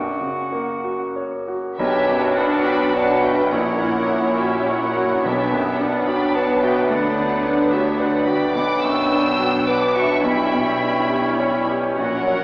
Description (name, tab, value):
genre	classical, romantic movement for piano and orchestra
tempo	106 BPM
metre	3/4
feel	uneven beats, rubato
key	B minor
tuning	A4 = 441 Hz
part	clear concert grand piano	melody	0.0-12.4 s	A#1 to D5	-21 LUFS	equal	none
part	clear clarinet	second line	0.0-12.4 s	A#3 to F#4	-29 LUFS	equal	none
part	dark cor anglais	second line	0.0-12.4 s	F#4 to C#5	-28 LUFS	equal	none
part	silver concert flute	second line	0.0-12.4 s	C#5 to C#6	-27 LUFS	equal	none
part	mellow French horn section	sustained chords	0.0-12.4 s	F#3 to E4	-28 LUFS	equal	none
part	muted symphonic violin section	melody	1.8-12.4 s	E5 to E6	-27 LUFS	equal	none
part	muted symphonic violin section	second line	1.8-12.4 s	G4 to G5	-28 LUFS	equal	none
part	muted symphonic viola section	accompaniment	1.8-12.4 s	B3 to F#4	-27 LUFS	equal	none
part	warm bassoon	accompaniment	1.8-12.4 s	F#3 to G3	-27 LUFS	equal	none
part	muted symphonic cello section	bass	1.8-12.4 s	A#2 to D3	-30 LUFS	equal	none
part	muted symphonic double bass section	bass	1.8-12.4 s	A#1 to D2	-38 LUFS	equal	none
part	timpani	percussion	1.8-6.0 s	B2	-38 LUFS	equal	none
room	wet scoring stage reverb, RT60 1.9 s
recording	heard from further back in the room, AM radio sound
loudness	-17 LUFS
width	side -24 dB against mid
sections	0.0-1.8 A section; 1.8-12.4 A section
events	none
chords	0.0 F#; 1.8 Bm; 3.5 F#7/A#; 5.2 Bm; 6.9 Bm/D; 8.6 Bm; 10.3 C#m7b5/B